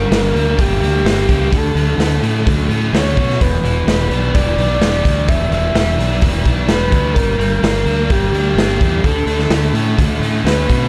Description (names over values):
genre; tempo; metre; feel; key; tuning
rock, shoegaze and dream pop; 128 BPM; 4/4; straight; D major; A4 = 440 Hz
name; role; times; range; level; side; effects
breathy flute-like synth lead; melody; 0.0-10.9 s; G4 to E5; -23 LUFS; equal; chorus, analog delay
biting overdriven guitar; riff; 0.0-10.9 s; E2 to E4; -24 LUFS; equal; analog chorus
crunchy overdriven guitar; riff; 0.0-10.9 s; E2 to G4; -26 LUFS; equal; reverse reverb
fuzz fingered electric bass; bass; 0.0-10.9 s; E1 to B2; -20 LUFS; equal; overdrive
raw garage drum kit; drums; 0.1-10.8 s; hi-hat, kick drum, snare drum; -20 LUFS; equal; none
room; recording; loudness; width
studio reverb; dark, warm production; -15 LUFS; mono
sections
0.0-10.9 A section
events
none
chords
0.0 Gm6; 1.5 Dmaj7; 3.4 Em7; 7.2 Gm6; 9.0 Dmaj7(no3)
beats
0.11 0.58 1.05 | 1.52 1.99 2.46 2.93 | 3.40 3.87 4.34 4.81 | 5.28 5.75 6.22 6.69 | 7.16 7.63 8.11 8.57 | 9.04 9.52 9.98 10.46